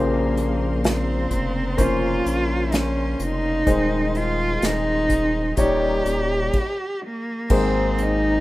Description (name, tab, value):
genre	pop ballad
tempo	63 BPM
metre	4/4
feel	straight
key	Ab major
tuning	A4 = 440 Hz
part	rich cello	melody	0.0-8.4 s	Bb3 to G4	-24 LUFS	right 1 dB	none
part	warm concert grand piano	accompaniment	0.0-8.4 s	Ab2 to Db5	-24 LUFS	left 2 dB	none
part	warm studio string section	sustained chords	0.0-8.4 s	G4 to C6	-36 LUFS	equal	none
part	flamenco guitar	arpeggios	0.0-8.4 s	Bb2 to Bb4	-34 LUFS	right 4 dB	none
part	saturated sub bass	bass	0.0-8.4 s	Eb1 to Bb1	-26 LUFS	equal	none
part	unplugged drum kit	drums	0.4-8.2 s	crash cymbal, hi-hat, kick drum, snare drum	-24 LUFS	equal	none
room	small room ambience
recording	rough home demo mix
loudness	-19 LUFS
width	side -17 dB against mid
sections	0.0-7.5 A section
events	stop 6.5-7.5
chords	0.0 Bbmadd9; 3.7 Ab/Eb; 5.6 Eb7; 7.5 Abadd9